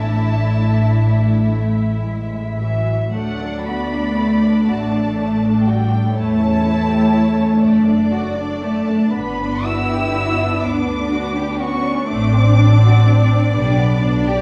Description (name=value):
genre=classical, slow romantic movement for string orchestra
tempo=40 BPM (dotted quarters)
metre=6/8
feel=uneven beats, rubato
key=D major from 3.1 s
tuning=A4 = 440 Hz
part: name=muted chamber violin section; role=melody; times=0.0-14.0 s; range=E5 to E6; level=-29 LUFS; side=equal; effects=none
part: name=muted symphonic violin section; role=second line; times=0.0-14.4 s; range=G3 to E5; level=-27 LUFS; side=equal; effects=none
part: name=muted symphonic viola section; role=accompaniment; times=0.0-14.4 s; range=F#3 to E4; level=-22 LUFS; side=equal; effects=none
part: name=muted symphonic cello section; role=bass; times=0.0-14.0 s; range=A2 to E4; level=-24 LUFS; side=equal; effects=none
part: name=muted symphonic double bass section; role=bass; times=0.0-14.4 s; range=F#1 to E2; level=-21 LUFS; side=equal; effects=none
room=wet recital hall reverb, RT60 1.6 s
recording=small room reverb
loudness=-17 LUFS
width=mono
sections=0.0-3.1 A section; 3.1-14.4 B section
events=none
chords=0.0 A5; 3.1 D; 6.2 A/E; 7.6 D/F#; 9.2 Gmaj7; 12.1 D7(no3)/A; 13.6 G/B